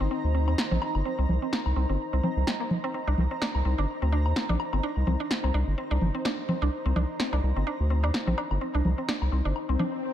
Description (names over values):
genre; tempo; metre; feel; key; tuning
minimal techno; 127 BPM; 4/4; swing 56% on 16ths; C minor; A4 = 441 Hz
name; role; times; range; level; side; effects
mallet-like synth pluck; riff; 0.0-9.8 s; G3 to D4; -33 LUFS; equal; chorus, phaser, dub echo
round analog bass; bass; 0.0-9.8 s; G1 to Eb2; -25 LUFS; equal; none
granular cloud pad; texture; 0.0-10.0 s; Eb4 to Bb5; -34 LUFS; equal; built-in reverb
woodblock and congas; percussion; 0.5-9.9 s; none; -32 LUFS; equal; overdrive, dub echo
electronic snare drum; drums; 0.6-9.2 s; none; -32 LUFS; equal; none
swell; sound effects; 9.7-10.1 s; none; -32 LUFS; left 6 dB; none
room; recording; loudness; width
light reverb, digital ambience; none; -25 LUFS; side -11 dB against mid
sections
0.0-10.1 A section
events
filter sweep on synth arpeggio sound 0.0-10.1; swell 9.7-10.1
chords
0.0 Cm7